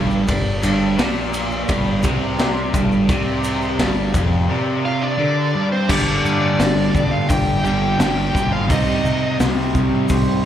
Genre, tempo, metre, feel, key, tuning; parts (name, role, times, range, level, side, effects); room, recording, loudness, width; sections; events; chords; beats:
classic rock; 86 BPM; 4/4; straight; G minor; A4 = 438 Hz
dark grand piano; accompaniment; 0.0-10.5 s; C4 to G5; -29 LUFS; equal; slapback echo
cranked stack guitar; riff; 0.0-10.4 s; F2 to Eb4; -24 LUFS; left 6 dB; overdrive, slapback echo
cranked stack guitar; riff; 0.0-10.5 s; F2 to C4; -25 LUFS; right 1 dB; overdrive, phaser
crunchy overdriven guitar; riff; 0.0-10.4 s; F2 to C4; -24 LUFS; right 8 dB; slapback echo
growling picked electric bass; bass; 0.0-10.4 s; F1 to C3; -23 LUFS; equal; overdrive
tube shaker; percussion; 0.1-10.3 s; -38 LUFS; right 2 dB
raw garage drum kit; drums; 0.3-10.3 s; crash cymbal, hi-hat, kick drum, ride cymbal, snare drum; -22 LUFS; equal
smooth overdriven lead guitar; melody; 4.9-9.4 s; C5 to G5; -23 LUFS; equal; slapback echo
octave-fuzz lead guitar; second line; 4.9-9.3 s; C4 to G4; -29 LUFS; right 2 dB; distortion, slapback echo
little or no reverb; live gig heard through the venue's PA, club reverb; -16 LUFS; side -10 dB against mid
0.0-5.9 A section; 5.9-10.5 B section
grand piano fill 0.0
0.0 Gm; 8.7 Cm
| 0.28 0.98 1.69 2.39 | 3.09 3.79 4.49 5.19 | 5.89 6.59 7.29 8.00 | 8.70 9.40 10.10